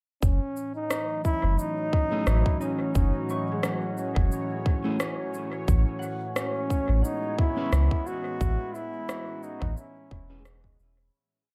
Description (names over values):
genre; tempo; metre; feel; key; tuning
ambient dub; 88 BPM; 4/4; swing 55% on 16ths; F# dorian; A4 = 439 Hz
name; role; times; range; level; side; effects
warm trombone; melody; 0.2-10.4 s; C#4 to F#4; -35 LUFS; equal; dub echo
warbly tape-like pad; sustained chords; 0.6-11.1 s; A2 to F#4; -36 LUFS; equal; chorus, built-in reverb
warm sub bass; bass; 0.2-11.1 s; E1 to C#2; -26 LUFS; equal; tube saturation
electronic kick drum; drums; 0.2-10.8 s; none; -28 LUFS; equal; none
electronic shaker and rim click; drums; 0.2-10.9 s; none; -37 LUFS; equal; dub echo
bubbling stepped-filter texture; texture; 0.8-11.2 s; C#5; -43 LUFS; equal; chorus, built-in reverb
electric guitar at the edge of break-up; stabs; 2.1-10.4 s; A3 to B4; -38 LUFS; equal; dub echo
concert harp; arpeggios; 2.6-11.2 s; G#3 to C#6; -42 LUFS; equal; none
room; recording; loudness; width
light reverb, digital ambience; none; -27 LUFS; mono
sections
0.2-11.1 groove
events
fade-out 7.5-11.1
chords
0.2 F#m7; 5.7 Amaj9